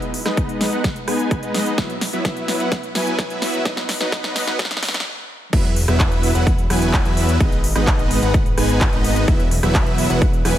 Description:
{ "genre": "EDM, festival progressive house", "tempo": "128 BPM", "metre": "4/4", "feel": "straight", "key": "E major", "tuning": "A4 = 440 Hz", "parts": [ { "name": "supersaw chords", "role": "riff", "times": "0.0-10.6 s", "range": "F#3 to G#5", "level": "-21 LUFS", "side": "equal", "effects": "sidechain pumping, low-pass filter, dub echo" }, { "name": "big-room dance drum kit", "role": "drums", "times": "0.0-10.5 s", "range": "crash cymbal, handclaps, hi-hat, rim click, snare drum", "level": "-24 LUFS", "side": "equal", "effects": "overdrive" }, { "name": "electronic kick drum", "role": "drums", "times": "0.4-10.3 s", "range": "none", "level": "-19 LUFS", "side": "equal", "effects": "overdrive" }, { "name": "fat analog bass", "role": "bass", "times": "5.5-10.6 s", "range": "E1 to E2", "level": "-20 LUFS", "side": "equal", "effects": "sidechain pumping" } ], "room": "light reverb, digital ambience", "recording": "high-pass filter", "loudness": "-16 LUFS", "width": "side -12 dB against mid", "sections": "0.0-5.5 A section; 5.5-10.6 B section", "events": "build-up 0.0-5.5; drum fill 0.0-5.1; filter sweep on supersaw synth 0.0-5.5; filter sweep 0.0-5.5; stop 5.1-5.5; drop 5.5-10.6", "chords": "0.0 G#m; 1.8 Esus2; 3.7 B; 5.5 Esus2; 7.4 G#m; 9.3 Esus2", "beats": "0.37 0.84 1.31 | 1.78 2.25 2.72 3.19 | 3.65 4.12 4.59 5.06 | 5.53 6.00 6.47 6.94 | 7.41 7.87 8.34 8.81 | 9.28 9.75 10.22" }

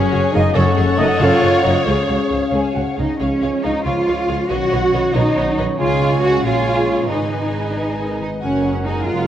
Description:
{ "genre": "cinematic", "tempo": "92 BPM (dotted quarters)", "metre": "6/8", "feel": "straight", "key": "Db mixolydian", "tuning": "A4 = 440 Hz", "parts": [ { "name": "warm symphonic violin section", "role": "melody", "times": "0.0-9.3 s", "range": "Db5 to Gb5", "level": "-30 LUFS", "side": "left 4 dB", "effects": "none" }, { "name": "mellow clarinet", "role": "second line", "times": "0.0-2.8, 7.8-8.4 s", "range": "Ab4 to Cb5", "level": "-24 LUFS", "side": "left 1 dB", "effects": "none" }, { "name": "warm symphonic violin section", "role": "second line", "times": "0.0-9.3 s", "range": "Cb5 to Ab5", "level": "-27 LUFS", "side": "left 2 dB", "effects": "none" }, { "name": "warm symphonic viola section", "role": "accompaniment", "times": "0.0-9.3 s", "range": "Gb4 to Db5", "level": "-26 LUFS", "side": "equal", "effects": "none" }, { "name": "mellow French horn section", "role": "sustained chords", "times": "0.0-9.3 s", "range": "Db4 to Gb4", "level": "-24 LUFS", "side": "left 2 dB", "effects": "none" }, { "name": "concert harp", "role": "arpeggios", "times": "0.0-9.3 s", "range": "Gb2 to Bb5", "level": "-25 LUFS", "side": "left 8 dB", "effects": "none" }, { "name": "dark trumpet section", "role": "stabs", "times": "0.0-9.3 s", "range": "Bb4 to Eb5", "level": "-26 LUFS", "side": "right 2 dB", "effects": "none" }, { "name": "rich symphonic double bass section", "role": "bass", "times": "0.1-9.3 s", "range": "Gb1 to Db2", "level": "-22 LUFS", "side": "right 2 dB", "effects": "none" }, { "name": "warm symphonic cello section", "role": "bass", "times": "0.1-9.3 s", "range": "Db2 to Gb4", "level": "-20 LUFS", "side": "right 2 dB", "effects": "none" }, { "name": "mellow trombone section", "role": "sustained chords", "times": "0.3-9.3 s", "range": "Gb2 to Bb3", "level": "-28 LUFS", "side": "right 2 dB", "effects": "none" }, { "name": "mellow hollow flute section", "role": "second line", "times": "2.5-3.0 s", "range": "F5 to Ab5", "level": "-31 LUFS", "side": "left 1 dB", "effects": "none" } ], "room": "wet scoring stage reverb, RT60 1.9 s", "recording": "worn, warbling old tape, cassette tape, warbly pitch drift", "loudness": "-15 LUFS", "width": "side -10 dB against mid", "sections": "0.0-3.2 A section; 3.2-9.3 B section", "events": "none", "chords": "0.0 Gbadd9; 0.5 Gbm; 1.9 Db; 4.5 Cbadd9; 5.8 Db; 7.1 Abm; 8.4 Gbadd9", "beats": "| 0.55 1.20 | 1.86 2.53 | 3.20 3.85 | 4.50 5.14 | 5.79 6.44 | 7.10 7.76 | 8.42 9.07" }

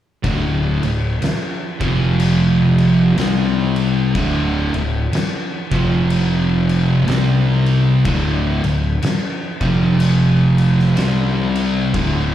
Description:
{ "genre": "stoner and doom metal", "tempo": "62 BPM", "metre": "4/4", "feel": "swing 60% on 8ths", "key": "D minor", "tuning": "A4 = 438 Hz", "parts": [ { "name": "overdriven electric guitar", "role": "riff", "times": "0.2-12.3 s", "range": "D2 to C4", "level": "-25 LUFS", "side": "right 3 dB", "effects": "none" }, { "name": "thick fuzz guitar", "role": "riff", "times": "0.2-12.3 s", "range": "D2 to C4", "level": "-17 LUFS", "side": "left 2 dB", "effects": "distortion" }, { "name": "thick fuzz guitar", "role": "riff", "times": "0.2-12.3 s", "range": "D2 to C4", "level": "-22 LUFS", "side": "right 7 dB", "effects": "distortion" }, { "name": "fuzz fingered electric bass", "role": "bass", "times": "0.2-12.3 s", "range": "D1 to C2", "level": "-23 LUFS", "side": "equal", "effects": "overdrive" }, { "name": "oversized low-tuned drum kit", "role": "drums", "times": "0.2-12.2 s", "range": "crash cymbal, kick drum, snare drum", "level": "-24 LUFS", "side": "equal", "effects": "none" } ], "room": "light reverb", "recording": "live gig heard through the venue's PA, club reverb", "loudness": "-14 LUFS", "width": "side -12 dB against mid", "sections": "0.2-12.3 A section", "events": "none", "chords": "0.2 D5; 1.7 F5; 3.2 C5; 4.2 D5; 5.6 F5; 7.1 C5; 8.1 D5; 9.5 F5; 11.0 C5", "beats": "| 0.24 1.22 2.20 3.18 | 4.15 5.13 6.11 7.08 | 8.06 9.03 10.00 10.97 | 11.95" }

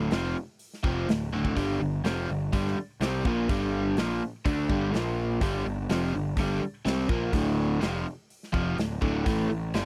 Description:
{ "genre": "blues rock power trio and southern rock", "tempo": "125 BPM", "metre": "4/4", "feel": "straight", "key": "unclear", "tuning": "A4 = 439 Hz", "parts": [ { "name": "overdriven electric guitar", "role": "riff", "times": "0.0-9.9 s", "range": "D2 to D4", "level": "-30 LUFS", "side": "equal", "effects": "none" }, { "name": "fuzz picked electric bass", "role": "bass", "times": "0.0-9.9 s", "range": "D1 to D2", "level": "-34 LUFS", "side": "equal", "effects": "overdrive" }, { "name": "big rock drum kit", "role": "drums", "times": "0.1-9.9 s", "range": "hi-hat, kick drum, snare drum, toms", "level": "-33 LUFS", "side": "equal", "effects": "none" } ], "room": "light reverb", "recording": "dry, close 1970s-style studio recording", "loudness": "-28 LUFS", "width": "mono", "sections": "0.0-9.9 A section", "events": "drum fill 1.3", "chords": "0.0 Dm7; 1.6 Gm7; 4.9 Bb5; 5.4 Gm7; 7.3 Dm7; 9.3 A7(no3)", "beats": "0.12 0.60 1.08 | 1.56 2.05 2.53 3.01 | 3.49 3.97 4.45 4.93 | 5.42 5.90 6.38 6.86 | 7.34 7.82 8.30 8.78 | 9.26 9.74" }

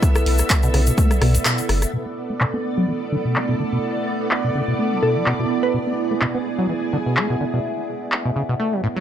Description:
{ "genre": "acid house", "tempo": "126 BPM", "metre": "4/4", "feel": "swing 54% on 16ths", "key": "B dorian", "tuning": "A4 = 443 Hz", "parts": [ { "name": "string machine, full ensemble", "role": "sustained chords", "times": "0.0-9.0 s", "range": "B3 to E5", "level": "-26 LUFS", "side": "right 1 dB", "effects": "ensemble chorus, sidechain pumping" }, { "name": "electronic kick drum", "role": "drums", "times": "0.0-1.1 s", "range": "none", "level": "-18 LUFS", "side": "equal", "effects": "overdrive" }, { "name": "punchy analog drum machine", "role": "drums", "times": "0.0-8.2 s", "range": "handclaps, hi-hat, rim click", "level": "-22 LUFS", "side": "left 1 dB", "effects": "overdrive, low-pass filter on snare, low-pass filter on hats" }, { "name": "tube shaker", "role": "percussion", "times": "0.0-1.9 s", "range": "none", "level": "-30 LUFS", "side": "left 4 dB", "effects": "none" }, { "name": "warbly tape-like pad", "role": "texture", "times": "0.0-9.0 s", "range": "A3 to F#5", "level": "-27 LUFS", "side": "right 3 dB", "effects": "chorus, built-in reverb, phaser, sidechain pumping" }, { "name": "warm sub bass", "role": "bass", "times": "0.3-1.9 s", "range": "F#1 to B1", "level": "-19 LUFS", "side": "equal", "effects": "sidechain pumping" }, { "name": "deep acid bass", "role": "riff", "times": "0.6-9.0 s", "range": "B1 to B3", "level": "-23 LUFS", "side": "equal", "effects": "overdrive, wide subtle chorus, tape echo" }, { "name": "glassy wavetable pluck", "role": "melody", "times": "5.0-6.3 s", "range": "A4 to B4", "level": "-24 LUFS", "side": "right 2 dB", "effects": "chorus, tape echo" } ], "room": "moderate small room reverb, RT60 0.5 s", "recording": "none", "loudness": "-18 LUFS", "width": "side -10 dB against mid", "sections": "0.0-1.9 A section; 1.9-9.0 B section", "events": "drop 0.0-1.9; break 1.5-1.9; band accent 1.5; filter sweep on acid bass 1.9-9.0", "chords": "0.0 Bm7", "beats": "| 0.03 0.50 0.98 1.45 | 1.93 2.41 2.88 3.36 | 3.83 4.31 4.79 5.26 | 5.74 6.22 6.69 7.17 | 7.64 8.12 8.60" }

